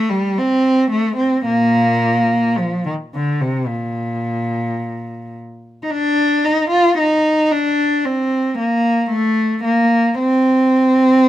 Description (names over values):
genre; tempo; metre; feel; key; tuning
classical, baroque-style suite movement for unaccompanied cello; 56 BPM; 4/4; rubato; Bb major; A4 = 440 Hz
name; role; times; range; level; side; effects
rich cello; solo; 0.0-11.3 s; Bb2 to F4; -14 LUFS; equal; none
room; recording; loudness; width
light reverb; minimal, uncompressed stereo recording; -14 LUFS; side -13 dB against mid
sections
0.0-5.9 A section; 5.9-11.3 B section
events
none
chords
none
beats
0.37 | 1.46 2.58 3.69 4.79 | 5.90 6.98 8.03 9.10 | 10.14 11.20